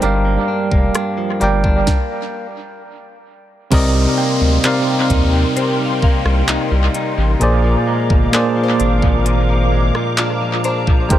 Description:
contemporary R&B; 65 BPM; 4/4; straight; C minor; A4 = 440 Hz
bell-like tine electric piano; accompaniment; 0.0-11.2 s; Bb2 to G5; -18 LUFS; right 2 dB; medium stereo tremolo, dub echo
direct-recorded clean electric guitar; arpeggios; 0.0-11.2 s; G2 to Eb4; -24 LUFS; left 5 dB; dub echo
saturated sub bass; bass; 0.0-11.2 s; F1 to Eb2; -17 LUFS; equal
trap drum kit; drums; 0.0-11.2 s; crash cymbal, handclaps, hi-hat, kick drum, rim click, snare drum; -18 LUFS; equal; dub echo
hollow soft pad; sustained chords; 3.7-11.2 s; Eb4 to Eb6; -24 LUFS; left 1 dB; ensemble chorus
downlifter; sound effects; 3.7-11.1 s; -28 LUFS; equal
mallet-like synth pluck; texture; 4.2-11.2 s; F4 to G5; -28 LUFS; left 1 dB
little or no reverb; echo-heavy mix; -13 LUFS; side -12 dB against mid
0.0-3.7 A section; 3.7-11.2 B section
stop 1.9-3.7
0.0 Gm7; 3.7 Cm7; 7.4 Bb7

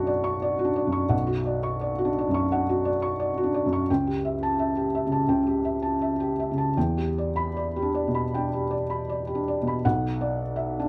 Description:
neoclassical minimalist piano; 76-89 BPM; 4/4; rubato; B minor; A4 = 440 Hz
felt-muted upright piano; solo; 0.0-10.9 s; B1 to C#6; -26 LUFS; equal
light reverb; close, detailed microphones; -26 LUFS; mono
0.0-9.8 A section; 9.8-10.9 A section
0.0 Bmadd9; 3.9 A7/C#; 6.8 Em7; 9.8 Bm

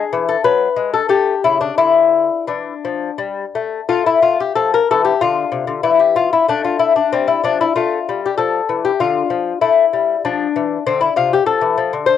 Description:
classical, baroque-style dance for lute; 84-99 BPM; 3/4; rubato; F major from 3.9 s; A4 = 440 Hz
lute; solo; 0.0-12.2 s; C3 to C5; -14 LUFS; left 6 dB; cassette tape
light reverb; home recording on cassette; -14 LUFS; side -9 dB against mid
0.0-3.9 A section; 3.9-12.2 A section
0.0 E; 1.1 A7; 1.8 N.C.; 3.9 F/A; 5.2 Csus24; 5.8 Fmaj13/E; 9.0 Dm; 9.6 F

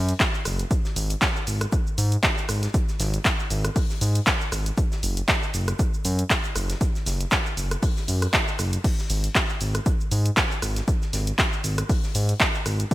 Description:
deep house; 118 BPM; 4/4; swing 56% on 16ths; A4 = 439 Hz
smooth synth bass; bass; 0.0-12.8 s; F#1 to G#2; -24 LUFS; equal; sidechain pumping
punchy analog drum machine; drums; 0.1-12.9 s; cabasa, crash cymbal, handclaps, hi-hat, rim click; -25 LUFS; equal; small room reverb, gated reverb
electronic kick drum; drums; 0.2-12.9 s; -24 LUFS; equal; small room reverb
huge arena drum kit; drums; 0.2-12.9 s; hi-hat, shaker, snare drum; -37 LUFS; left 1 dB; sidechain pumping on hats, high-pass filter on hats, small room reverb, high-pass filter on snare, sidechain pumping on perc, high-pass filter on perc, high-pass filter on room, gated reverb
light reverb; bright 1980s-style digital production; -21 LUFS; side -17 dB against mid
0.0-12.9 A section

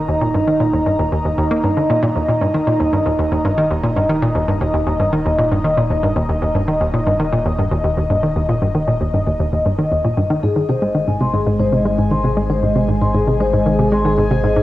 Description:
ambient, sequencer-driven space music; 116 BPM; 4/4; straight; Eb major, Ab major from 10.4 s; A4 = 440 Hz
sweeping resonant pad; sustained chords; 0.0-14.6 s; Ab3 to Bb5; -20 LUFS; equal; chorus, cassette tape, shimmer reverb
hollow square pluck; riff; 0.0-14.6 s; Eb2 to Bb3; -17 LUFS; equal; chorus, cassette tape, tape echo
warm sub bass; bass; 0.0-14.6 s; Eb1 to Ab1; -26 LUFS; equal
vibraphone with soft mallets; arpeggios; 10.4-14.6 s; Ab4 to C6; -20 LUFS; left 3 dB; auto-pan, low-pass filter, cassette tape, tape echo, shimmer reverb
bubbling stepped-filter texture; texture; 11.1-14.6 s; Ab4 to Ab5; -27 LUFS; right 1 dB; chorus, built-in reverb, cassette tape, shimmer reverb
wet spring reverb, RT60 1.2 s, digital ambience; home recording on cassette; -15 LUFS; side -15 dB against mid
0.0-10.4 A section; 10.4-14.6 B section
fade-in on sub bass 0.0-10.4
0.0 Eb; 10.4 Ab

